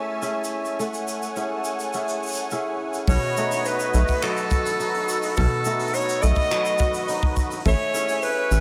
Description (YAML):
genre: folktronica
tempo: 105 BPM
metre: 4/4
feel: straight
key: B mixolydian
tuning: A4 = 439 Hz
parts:
  - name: musette accordion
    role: sustained chords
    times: 0.0-8.6 s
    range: A3 to G#5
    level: -32 LUFS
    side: equal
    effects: none
  - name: kora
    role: arpeggios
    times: 0.0-8.6 s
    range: B2 to G#4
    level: -31 LUFS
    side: equal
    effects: diffuse ambient delay
  - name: backwards swelling texture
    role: texture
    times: 0.0-3.1 s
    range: A4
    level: -47 LUFS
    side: equal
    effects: none
  - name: vintage brush drum kit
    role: drums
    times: 0.2-8.6 s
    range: finger snaps, hi-hat, shaker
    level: -35 LUFS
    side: equal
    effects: none
  - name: bright clarinet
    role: melody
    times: 3.1-8.6 s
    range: A4 to D#5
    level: -27 LUFS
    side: equal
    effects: diffuse ambient delay
  - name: round analog bass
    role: bass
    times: 3.1-8.6 s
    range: A1 to B1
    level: -21 LUFS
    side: equal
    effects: none
  - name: kick drum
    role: drums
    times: 3.1-7.8 s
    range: none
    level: -26 LUFS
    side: equal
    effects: none
room: moderate huge ambient reverb, RT60 6.1 s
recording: dreamy mix soaked in reverb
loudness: -23 LUFS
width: mono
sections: 0.0-3.1 A section; 3.1-8.6 B section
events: none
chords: 0.0 Amaj7; 3.1 B7; 7.7 Amaj7